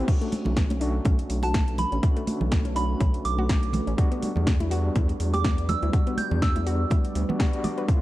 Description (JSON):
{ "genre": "deep house", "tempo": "123 BPM", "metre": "4/4", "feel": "swing 56% on 16ths", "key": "unclear", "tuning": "A4 = 441 Hz", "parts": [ { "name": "soft round pluck", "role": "arpeggios", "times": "0.0-7.9 s", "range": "A3 to D5", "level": "-35 LUFS", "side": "left 2 dB", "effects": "chorus, sidechain pumping, tape echo" }, { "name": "overdriven tine electric piano", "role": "stabs", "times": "0.0-8.0 s", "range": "G3 to F#4", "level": "-32 LUFS", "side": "equal", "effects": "medium tremolo, sidechain pumping, tape echo" }, { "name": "round analog bass", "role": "bass", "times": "0.0-7.2 s", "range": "A1 to E2", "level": "-26 LUFS", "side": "equal", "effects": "tube saturation, sidechain pumping" }, { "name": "deep dark ambient pad", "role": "sustained chords", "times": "1.7-8.0 s", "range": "D3 to D5", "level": "-38 LUFS", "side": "right 2 dB", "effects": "chorus, built-in reverb, sidechain pumping" }, { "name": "deep house drum kit", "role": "drums", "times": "0.1-8.0 s", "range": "crash cymbal, hi-hat, snare drum", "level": "-34 LUFS", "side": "equal", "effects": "overdrive, small room ambience" }, { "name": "electronic kick drum", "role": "drums", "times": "0.1-8.0 s", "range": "none", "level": "-23 LUFS", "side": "equal", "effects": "overdrive, small room ambience" }, { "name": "congas", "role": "percussion", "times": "0.3-7.8 s", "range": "none", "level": "-31 LUFS", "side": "right 2 dB", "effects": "none" }, { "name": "soft synth bell", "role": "melody", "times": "1.4-6.9 s", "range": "A5 to G6", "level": "-31 LUFS", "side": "right 3 dB", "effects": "chorus, vintage 12-bit sampler grit, tape echo" } ], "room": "digital ambience", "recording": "cassette tape", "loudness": "-22 LUFS", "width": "side -16 dB against mid", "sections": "0.0-8.0 A section", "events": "none", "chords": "0.1 Bm9; 4.0 Em9", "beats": "| 0.08 0.57 1.05 1.54 | 2.03 2.52 3.01 3.49 | 3.98 4.47 4.96 5.45 | 5.93 6.42 6.91 7.40 | 7.88" }